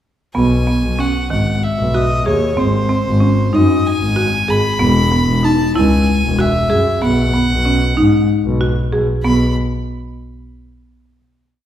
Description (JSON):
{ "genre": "contemporary instrumental, chamber music in an uneven meter", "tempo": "189 BPM (eighths)", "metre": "7/8", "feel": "straight", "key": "unclear", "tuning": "A4 = 440 Hz", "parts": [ { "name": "buzzing marimba with hard mallets", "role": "arpeggios", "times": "0.3-9.5 s", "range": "D#3 to G#4", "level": "-17 LUFS", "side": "right 1 dB", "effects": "none" }, { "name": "bright violin", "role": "melody", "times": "0.4-9.5 s", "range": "B#4 to B5", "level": "-20 LUFS", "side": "left 1 dB", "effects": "none" }, { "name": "bright double bass", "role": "bass", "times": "0.4-9.5 s", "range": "E1 to G#2", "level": "-16 LUFS", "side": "equal", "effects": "none" } ], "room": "wet recital hall reverb, RT60 1.4 s", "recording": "heard from further back in the room", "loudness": "-13 LUFS", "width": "side -11 dB against mid", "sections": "0.4-9.2 A section; 9.2-11.5 final note", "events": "none", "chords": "0.4 B; 2.6 G#; 4.8 E; 7.0 B; 9.2 N.C.", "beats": "| 0.35 0.67 0.99 1.31 1.62 1.94 2.26 | 2.58 2.89 3.21 3.53 3.85 4.16 4.48 | 4.80 5.11 5.43 5.75 6.07 6.38 6.70 | 7.02 7.33 7.65 7.97 8.29 8.60 8.92 | 9.24" }